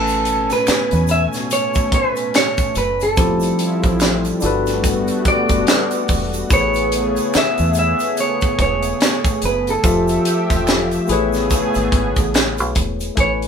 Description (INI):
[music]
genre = R&B, neo-soul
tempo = 72 BPM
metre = 4/4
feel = swing 59% on 16ths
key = A major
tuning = A4 = 441 Hz
[part]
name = electric guitar at the edge of break-up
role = melody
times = 0.0-13.3 s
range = A4 to E5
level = -19 LUFS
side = right 2 dB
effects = none
[part]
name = barky tine electric piano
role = accompaniment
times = 0.0-13.5 s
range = A2 to G#5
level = -22 LUFS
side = left 4 dB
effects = none
[part]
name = lush unison pad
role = sustained chords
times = 0.0-13.2 s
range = B2 to G#5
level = -23 LUFS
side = right 1 dB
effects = chorus
[part]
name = deep dub fingered electric bass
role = bass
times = 0.0-13.5 s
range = E1 to E2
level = -23 LUFS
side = equal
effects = none
[part]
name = tight funk drum kit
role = drums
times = 0.1-13.5 s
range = hi-hat, kick drum, snare drum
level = -19 LUFS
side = equal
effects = none
[part]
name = tube shaker and finger snaps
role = percussion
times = 0.1-13.2 s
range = none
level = -30 LUFS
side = right 4 dB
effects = none
[sound]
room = moderate studio reverb, RT60 0.6 s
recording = band playing live in one room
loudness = -15 LUFS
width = side -7 dB against mid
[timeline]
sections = 0.0-13.2 A section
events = none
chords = 0.0 Amaj9; 3.2 Fmaj9; 4.4 Gmaj9; 6.5 Amaj9; 9.8 Fmaj9; 11.1 Amaj9